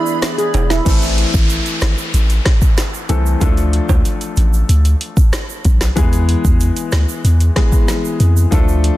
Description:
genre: dancehall.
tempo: 94 BPM.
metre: 4/4.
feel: straight.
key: A harmonic minor.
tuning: A4 = 440 Hz.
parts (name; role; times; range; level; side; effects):
clear concert grand piano; accompaniment; 0.0-9.0 s; E3 to B4; -22 LUFS; left 4 dB; none.
hollow soft pad; sustained chords; 0.0-0.8 s; G#4 to B5; -26 LUFS; right 4 dB; ensemble chorus, sidechain pumping.
egg shaker and timbales; percussion; 0.1-8.8 s; none; -29 LUFS; right 10 dB; none.
afro-pop drum kit; drums; 0.2-9.0 s; crash cymbal, hi-hat, kick drum, rim click, snare drum; -15 LUFS; equal; soft clipping on snare.
steel pan; melody; 0.4-0.8 s; E4 to G#4; -20 LUFS; right 4 dB; ping-pong delay.
punchy sub bass; bass; 0.5-8.9 s; E1 to F2; -14 LUFS; equal; none.
downlifter; sound effects; 0.9-6.0 s; none; -25 LUFS; equal; none.
room: little or no reverb.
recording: dense, heavily limited modern master.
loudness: -12 LUFS.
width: side -16 dB against mid.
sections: 0.9-9.0 A section.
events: break 0.0-0.9.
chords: 0.0 E7; 0.9 Am; 3.4 Dm; 6.0 E.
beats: 0.22 | 0.86 1.50 2.14 2.78 | 3.42 4.05 4.69 5.33 | 5.97 6.61 7.25 7.88 | 8.52.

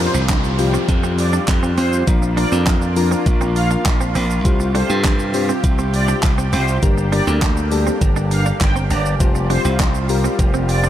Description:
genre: dance-pop.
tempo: 101 BPM.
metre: 4/4.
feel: straight.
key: unclear.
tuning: A4 = 442 Hz.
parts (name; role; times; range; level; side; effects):
filtered supersaw swell; melody; 0.0-10.8 s; C5 to G5; -26 LUFS; right 1 dB; phaser, tape echo.
soft electric-piano-like synth keys; accompaniment; 0.0-10.9 s; F3 to C5; -24 LUFS; left 7 dB; chorus, sidechain pumping.
lush unison pad; sustained chords; 0.0-10.9 s; C3 to G4; -26 LUFS; right 2 dB; chorus, sidechain pumping.
semi-hollow electric guitar; riff; 0.0-10.9 s; C4 to D4; -28 LUFS; right 5 dB; wide subtle chorus.
glassy slap bass; bass; 0.0-10.9 s; F1 to G2; -18 LUFS; equal; sidechain pumping.
pop drum kit; drums; 0.0-10.9 s; handclaps, hi-hat, kick drum, shaker, snare drum; -20 LUFS; equal; overdrive.
downlifter; sound effects; 0.0-4.5 s; none; -30 LUFS; equal; none.
group handclap; percussion; 0.3-9.9 s; none; barely audible; none; none.
room: light reverb, digital ambience.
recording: none.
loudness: -15 LUFS.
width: side -12 dB against mid.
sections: 0.0-10.9 A section.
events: none.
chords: 0.0 Fsus2; 2.1 Bb; 4.5 Csus4; 6.8 Gm; 9.2 Fsus2.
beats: 0.29 0.89 1.48 | 2.07 2.67 3.26 3.86 | 4.45 5.04 5.64 6.23 | 6.83 7.42 8.02 8.61 | 9.20 9.80 10.39.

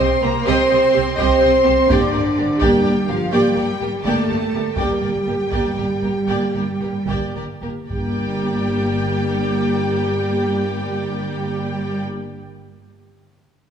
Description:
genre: cinematic, epic orchestral film score.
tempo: 71-84 BPM (dotted quarters).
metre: 12/8.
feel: straight.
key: G minor.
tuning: A4 = 443 Hz.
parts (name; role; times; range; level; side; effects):
warm symphonic violin section; melody; 0.0-12.0 s; D5 to C6; -30 LUFS; left 4 dB; none.
warm symphonic violin section; second line; 0.0-12.0 s; G4 to G5; -28 LUFS; left 1 dB; none.
rich symphonic viola section; accompaniment; 0.0-12.0 s; Bb3 to G4; -24 LUFS; right 1 dB; none.
warm French horn section; sustained chords; 0.0-12.0 s; D4 to C5; -21 LUFS; equal; none.
rich symphonic cello section; bass; 0.0-12.0 s; D3 to C4; -24 LUFS; right 3 dB; none.
warm symphonic double bass section; bass; 0.0-12.0 s; G1 to C2; -26 LUFS; right 3 dB; none.
taiko ensemble; drums; 1.2-9.0 s; none; -28 LUFS; right 1 dB; none.
timpani; percussion; 7.9-12.6 s; G2; -34 LUFS; equal; none.
room: wet scoring stage reverb, RT60 1.9 s.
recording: none.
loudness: -16 LUFS.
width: side -8 dB against mid.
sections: 0.0-7.9 A section; 7.9-11.3 B section.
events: slowing down 2.9-7.9.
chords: 0.0 Cm; 1.9 Gm.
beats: 0.47 1.18 | 1.90 2.61 3.33 4.05 | 4.78 5.52 6.29 7.08 | 7.90 8.74 9.59 10.43.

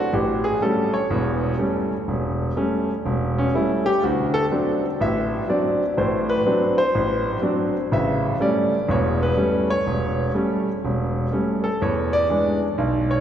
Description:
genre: solo jazz.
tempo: 123 BPM.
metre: 4/4.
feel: swing 66% on 8ths.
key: A mixolydian.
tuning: A4 = 440 Hz.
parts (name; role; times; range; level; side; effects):
clear concert grand piano; solo; 0.0-13.2 s; E1 to E5; -19 LUFS; equal; none.
room: wet cathedral reverb, RT60 5.2 s.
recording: recorded in a church or concert hall.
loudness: -19 LUFS.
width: side -9 dB against mid.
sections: 0.0-13.2 A section.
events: grand piano solo 0.0-13.2.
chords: 0.1 A7; 4.0 D7; 7.9 A7; 11.8 E7.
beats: | 0.12 0.61 1.09 1.58 | 2.07 2.56 3.04 3.53 | 4.02 4.50 4.99 5.48 | 5.96 6.45 6.94 7.42 | 7.91 8.40 8.88 9.37 | 9.86 10.34 10.83 11.31 | 11.80 12.29 12.77.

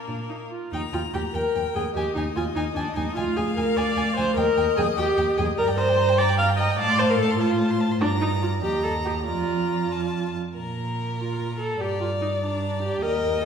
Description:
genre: quick classical-period movement for string quartet.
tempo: 98 BPM (dotted quarters).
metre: 6/8.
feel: rubato.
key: Eb major, Bb major from 5.6 s.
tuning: A4 = 439 Hz.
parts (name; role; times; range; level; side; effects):
clear violin; melody; 0.0-13.5 s; Bb4 to Bb5; -34 LUFS; left 7 dB; none.
rich violin; second line; 0.0-13.5 s; Bb3 to C6; -31 LUFS; left 2 dB; none.
rich viola; accompaniment; 0.0-13.4 s; D4 to F5; -24 LUFS; equal; none.
rich cello; bass; 0.1-13.5 s; D2 to Bb2; -27 LUFS; right 2 dB; none.
room: wet recital hall reverb, RT60 1.5 s.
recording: heard from further back in the room.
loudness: -21 LUFS.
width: side -7 dB against mid.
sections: 0.7-10.6 A section; 10.6-13.5 B section.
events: none.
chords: 0.0 Bb5; 0.7 Eb; 2.0 Ebadd11; 3.2 Dm7b5; 4.4 Eb; 5.6 Gm; 6.8 F/A; 8.0 Gm; 8.6 Eb5; 9.3 Bb/F; 10.6 Bb5; 11.8 Gm.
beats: 0.08 | 0.72 1.35 | 1.96 2.56 | 3.17 3.77 | 4.37 4.98 | 5.58 6.18 | 6.79 7.39 | 8.01 8.63 | 9.27 9.91 | 10.56 11.19 | 11.81 12.42 | 13.03.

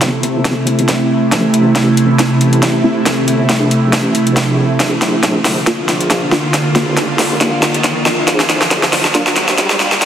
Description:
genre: deep dubstep.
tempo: 138 BPM.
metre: 4/4.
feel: swing 55% on 16ths, half-time.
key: A phrygian.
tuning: A4 = 442 Hz.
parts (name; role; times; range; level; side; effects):
bowed-like drone; sustained chords; 0.0-10.1 s; C3 to F4; -14 LUFS; right 1 dB; built-in reverb, phaser.
deep soft wobble bass; bass; 0.0-10.1 s; F1 to Bb1; -21 LUFS; equal; chorus, tube saturation, high-pass filter.
deep house drum kit; drums; 0.0-10.1 s; hi-hat, snare drum; -15 LUFS; equal; overdrive, high-pass filter on snare, small room ambience, high-pass filter on hats.
electronic kick drum; drums; 0.0-10.1 s; none; -23 LUFS; equal; none.
filtered dub chord stab; stabs; 2.2-2.9, 5.7-9.2 s; A3 to F4; -20 LUFS; equal; chorus, dub echo.
riser; sound effects; 5.3-10.1 s; none; -23 LUFS; right 1 dB; none.
room: wet lush hall reverb, RT60 1.9 s.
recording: dense, heavily limited modern master, vinyl crackle, high-pass filter.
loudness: -11 LUFS.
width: side -9 dB against mid.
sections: 0.0-10.1 A section.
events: build-up 0.0-10.1; drum fill 0.0-10.1; filter sweep on synth stab 0.0-10.1; filter sweep 0.0-10.1; riser 5.3-10.1.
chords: 0.0 Am; 4.8 Bb.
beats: 0.02 0.45 0.89 | 1.32 1.75 2.19 2.62 | 3.06 3.49 3.93 4.36 | 4.80 5.23 5.67 6.10 | 6.54 6.97 7.41 7.84 | 8.28 8.71 9.15 9.58 | 10.02.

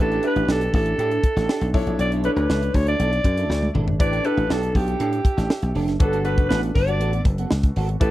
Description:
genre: polished 1980s jazz-funk pop.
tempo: 120 BPM.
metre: 4/4.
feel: straight.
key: unclear.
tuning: A4 = 440 Hz.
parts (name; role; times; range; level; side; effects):
growling alto saxophone; melody; 0.0-8.1 s; G4 to D5; -24 LUFS; equal; slapback echo.
clear concert grand piano; accompaniment; 0.0-8.1 s; D4 to C#5; -28 LUFS; left 1 dB; wide subtle chorus.
clean electric guitar; riff; 0.0-8.1 s; B3 to A4; -29 LUFS; right 5 dB; analog chorus.
dry thumbed slap bass; bass; 0.0-8.1 s; E#1 to A2; -23 LUFS; equal; none.
tight funk drum kit; drums; 0.1-8.1 s; hi-hat, kick drum, snare drum, toms; -21 LUFS; equal; none.
room: little or no reverb.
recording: dry, close 1970s-style studio recording.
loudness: -18 LUFS.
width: side -15 dB against mid.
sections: 0.0-8.1 A section.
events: drum fill 3.5-4.0.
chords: 0.0 A7sus4; 1.7 Bm11; 4.0 A7sus4; 6.0 Gmaj9.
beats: 0.49 0.99 1.49 | 2.00 2.50 3.00 3.50 | 4.00 4.50 5.00 5.50 | 6.00 6.50 7.01 7.51 | 8.01.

